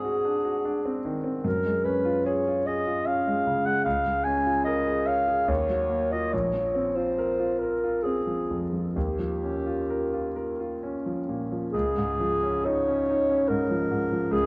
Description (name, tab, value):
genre	classical, impressionist duo for clarinet and grand piano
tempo	62-77 BPM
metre	3/4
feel	rubato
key	Db major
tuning	A4 = 440 Hz
part	dark clarinet	melody	0.0-14.5 s	G4 to Ab5	-29 LUFS	equal	none
part	warm concert grand piano	accompaniment	0.0-14.5 s	Bb1 to Db5	-30 LUFS	equal	none
room	wet recital hall reverb, RT60 1.5 s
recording	dark, warm production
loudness	-27 LUFS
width	mono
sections	0.0-11.7 A section; 11.7-14.5 B section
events	none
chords	0.0 G#7#11; 1.4 Gbsus2; 3.9 Db6; 5.5 Ebm9; 6.3 Bbsus2; 8.9 Eb9; 11.7 Db69